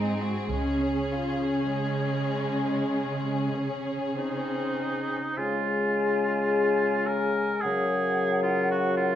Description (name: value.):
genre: classical, slow romantic movement for symphony orchestra.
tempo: 49-56 BPM.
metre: 4/4.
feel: rubato.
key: Db major.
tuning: A4 = 439 Hz.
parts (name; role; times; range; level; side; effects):
rich chamber violin section; melody; 0.0-5.1 s; Ab4; -37 LUFS; left 3 dB; none.
mellow hollow silver concert flute; second line; 0.0-9.2 s; Db5 to Ab5; -35 LUFS; left 1 dB; none.
warm symphonic violin section; second line; 0.0-5.4 s; Ab3 to Gb4; -34 LUFS; left 2 dB; none.
rich chamber viola section; accompaniment; 0.0-5.2 s; C4 to Db4; -32 LUFS; left 1 dB; none.
warm chamber cello section; bass; 0.0-5.2 s; Ab2 to Db3; -31 LUFS; right 3 dB; none.
dark chamber double bass section; bass; 0.5-1.7 s; Db2; -35 LUFS; right 2 dB; none.
warm oboe; second line; 4.2-9.2 s; Eb4 to Bb4; -29 LUFS; right 2 dB; none.
dark bassoon; accompaniment; 5.4-9.2 s; Db3; -28 LUFS; right 2 dB; none.
mellow French horn section; sustained chords; 5.4-9.2 s; Gb3 to Bb4; -27 LUFS; left 6 dB; none.
room: wet recital hall reverb, RT60 1.3 s.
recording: faint mains hum.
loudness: -24 LUFS.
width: side -10 dB against mid.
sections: 0.0-5.4 A section; 5.4-9.2 A section.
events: none.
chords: 0.0 Ab7; 0.5 Db5; 5.4 Db; 7.6 Gb/Db.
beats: | 0.51 1.72 2.95 4.17 | 5.37 6.52 7.63 8.71.